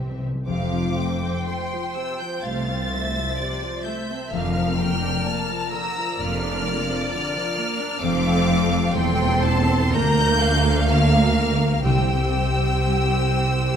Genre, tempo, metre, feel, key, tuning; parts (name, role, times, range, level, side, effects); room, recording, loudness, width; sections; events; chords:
classical, slow romantic movement for symphony orchestra; 63 BPM; 4/4; uneven beats, rubato; F major; A4 = 439 Hz
rich symphonic violin section; melody; 0.0-13.8 s; E5 to A6; -28 LUFS; left 1 dB
rich studio violin section; second line; 0.0-13.8 s; G4 to Bb5; -28 LUFS; left 2 dB
warm symphonic viola section; accompaniment; 0.0-13.8 s; C3 to C5; -27 LUFS; right 1 dB
concert harp; arpeggios; 0.0-13.8 s; C3 to Bb5; -28 LUFS; left 5 dB
rich symphonic cello section; bass; 0.0-13.8 s; C2 to C3; -25 LUFS; right 2 dB
rich symphonic double bass section; bass; 0.0-13.8 s; E1 to D2; -26 LUFS; right 2 dB
timpani; percussion; 0.0-1.9, 11.8-13.3 s; F2 to C3; -27 LUFS; left 1 dB
wet scoring stage reverb, RT60 1.5 s; minimal, uncompressed stereo recording; -19 LUFS; side -8 dB against mid
0.5-13.8 A section
timpani fill 0.0-0.5
0.5 F; 4.3 Bb/F; 8.0 F; 9.9 Bb/D; 11.9 C